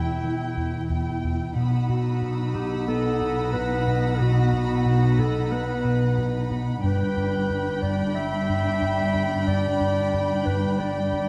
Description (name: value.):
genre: cinematic, suspense film score.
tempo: 91 BPM.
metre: 4/4.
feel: straight.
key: unclear.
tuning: A4 = 436 Hz.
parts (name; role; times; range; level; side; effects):
warm symphonic violin section; melody; 0.0-11.3 s; G5 to B5; -40 LUFS; equal; none.
mellow clarinet; second line; 0.0-11.3 s; E4 to E5; -30 LUFS; equal; none.
warm symphonic violin section; second line; 0.0-11.3 s; F#5 to G5; -37 LUFS; equal; none.
dark symphonic viola section; accompaniment; 0.0-11.3 s; D4 to E4; -36 LUFS; equal; none.
rubbery square bass; riff; 0.0-11.3 s; E2 to B3; -31 LUFS; equal; none.
dark studio cello section; bass; 0.0-11.3 s; E2 to B2; -30 LUFS; equal; none.
warm chamber double bass section; bass; 0.0-11.3 s; E1 to B1; -30 LUFS; equal; none.
warm symphonic violin section; texture; 1.6-11.3 s; B5 to A#6; -44 LUFS; equal; none.
room: wet scoring stage reverb, RT60 1.6 s.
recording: dark, warm production, vinyl crackle.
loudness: -24 LUFS.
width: mono.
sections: 0.0-11.3 A section.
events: none.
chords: 0.0 Em; 1.6 B; 6.8 G.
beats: 0.24 0.90 | 1.56 2.22 2.88 3.54 | 4.20 4.86 5.52 6.18 | 6.83 7.49 8.15 8.81 | 9.47 10.13 10.79.